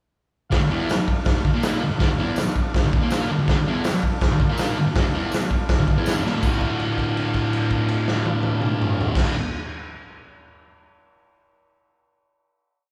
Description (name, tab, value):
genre	garage rock duo or trio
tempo	163 BPM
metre	4/4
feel	straight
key	D minor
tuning	A4 = 441 Hz
part	overdriven combo organ	sustained chords	0.5-9.3 s	F4 to D5	-35 LUFS	equal	none
part	thick fuzz guitar	riff	0.5-9.3 s	D2 to Bb3	-25 LUFS	equal	distortion
part	raw garage drum kit	drums	0.5-9.3 s	crash cymbal, hi-hat, kick drum, snare drum, toms	-25 LUFS	equal	none
part	tambourine	percussion	0.9-6.6 s	none	-43 LUFS	equal	none
room	wet large studio reverb, RT60 0.9 s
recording	band playing live in one room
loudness	-22 LUFS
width	mono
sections	0.5-6.4 riff; 6.4-9.4 final chord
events	drum fill 6.2; held note 6.4-9.2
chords	0.5 Dm